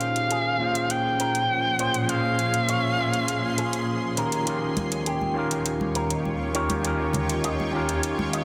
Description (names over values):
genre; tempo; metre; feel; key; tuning
sunset chillout; 101 BPM; 4/4; straight; Bb dorian; A4 = 440 Hz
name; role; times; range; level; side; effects
warm soprano saxophone; melody; 0.0-4.2 s; F5 to G5; -28 LUFS; equal; delay
overdriven tine electric piano; accompaniment; 0.0-8.4 s; Bb2 to C6; -29 LUFS; equal; delay
shimmering ambient pad; sustained chords; 0.0-8.4 s; Eb2 to C6; -32 LUFS; equal; chorus, built-in reverb, phaser
electronic hi-hat; drums; 0.0-8.4 s; none; -32 LUFS; equal; overdrive, small room reverb, soft clipping on snare
electric guitar with an envelope filter; arpeggios; 0.3-8.4 s; G4 to Eb5; -36 LUFS; equal; harmonic tremolo, low-pass filter, delay
congas; percussion; 4.8-8.3 s; none; -36 LUFS; equal; none
room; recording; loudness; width
moderate concert hall reverb, RT60 2.2 s; dense, heavily limited modern master; -25 LUFS; mono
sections
0.0-8.4 A section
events
filter sweep on clean electric guitar 0.0-8.4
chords
0.0 Bbm9; 4.2 Eb7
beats
0.31 0.91 1.50 | 2.09 2.69 3.28 3.88 | 4.47 5.06 5.66 6.25 | 6.85 7.44 8.04